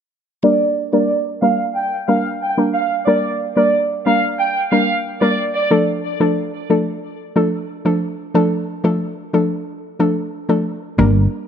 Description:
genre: dancehall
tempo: 91 BPM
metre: 4/4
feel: straight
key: G minor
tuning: A4 = 440 Hz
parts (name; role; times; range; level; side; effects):
- warm studio violin section; melody; 0.4-5.7 s; D5 to G5; -18 LUFS; right 2 dB; low-pass filter, ping-pong delay
- soft round pluck; accompaniment; 0.4-11.4 s; F3 to Bb4; -18 LUFS; left 1 dB; chorus, low-pass filter
- woody fretless electric bass; bass; 11.0-11.3 s; G1; -13 LUFS; equal; none
room: light reverb, small room ambience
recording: none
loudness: -15 LUFS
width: side -8 dB against mid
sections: 0.4-11.0 A section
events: filter sweep 0.4-11.0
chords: 0.4 Gm; 5.7 Dm

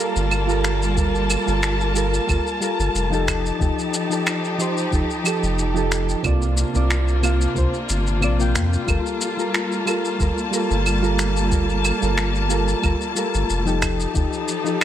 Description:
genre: sunset chillout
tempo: 91 BPM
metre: 4/4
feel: swing 53% on 16ths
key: G minor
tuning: A4 = 440 Hz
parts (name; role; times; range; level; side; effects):
- soft electric-piano-like synth keys; accompaniment; 0.0-14.8 s; C3 to G5; -24 LUFS; moving between left 5 dB and right 9 dB; chorus, auto-pan, digital delay
- warm studio string section; sustained chords; 0.0-14.8 s; C3 to A5; -25 LUFS; left 2 dB; none
- round analog bass; bass; 0.2-14.3 s; F1 to F2; -22 LUFS; equal; none
- electronic shaker, claves and finger snaps; drums; 0.2-14.8 s; none; -26 LUFS; right 1 dB; none
- electronic kick drum; drums; 1.0-14.3 s; none; -24 LUFS; equal; none
room: light reverb, digital ambience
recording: none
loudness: -18 LUFS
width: side -11 dB against mid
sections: 0.0-14.8 A section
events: none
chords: 0.0 Gm9; 3.3 F9; 6.2 C9sus4; 8.9 Gm9; 13.8 F9

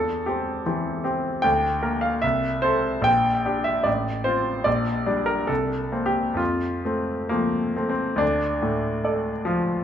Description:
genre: classical, romantic character piece for solo piano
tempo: 64-77 BPM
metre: 2/4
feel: rubato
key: F major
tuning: A4 = 441 Hz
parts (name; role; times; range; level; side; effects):
- bright grand piano; solo; 0.0-9.8 s; A1 to G5; -21 LUFS; equal; none
room: wet recital hall reverb, RT60 1.4 s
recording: dark, warm production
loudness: -21 LUFS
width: side -9 dB against mid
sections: 0.0-8.2 A section; 8.2-9.8 B section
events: none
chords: 0.0 C/E; 1.4 Bb/D; 2.2 Am/C; 3.1 Gm/Bb; 3.9 F/A; 4.7 Gm/Bb; 5.5 Am7/C; 6.4 F; 8.2 Dm

